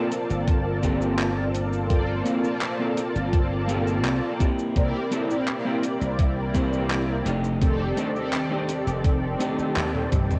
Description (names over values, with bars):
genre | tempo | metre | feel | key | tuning
vaporwave | 84 BPM | 4/4 | straight | G minor | A4 = 439 Hz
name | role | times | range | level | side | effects
mellow synth brass | accompaniment | 0.0-10.4 s | Eb3 to A5 | -29 LUFS | equal | ensemble chorus, tape echo
electric guitar at the edge of break-up | riff | 0.0-10.3 s | A3 to C5 | -31 LUFS | equal | lush chorus, tape echo
gated 80s digital drum machine | drums | 0.1-10.4 s | cabasa, handclaps, hi-hat, toms | -34 LUFS | equal | gated reverb, vintage 12-bit sampler grit
slap bass | bass | 0.3-10.4 s | F1 to Eb2 | -30 LUFS | equal | none
electronic kick drum | drums | 0.5-10.3 s | none | -25 LUFS | equal | vintage 12-bit sampler grit
room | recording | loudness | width
light reverb | worn, warbling old tape, cassette tape, warbly pitch drift | -25 LUFS | mono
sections
0.0-10.4 A section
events
band accent 9.8-10.1; drum fill 9.9-10.4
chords
0.0 Gm11; 4.4 C7; 7.3 F13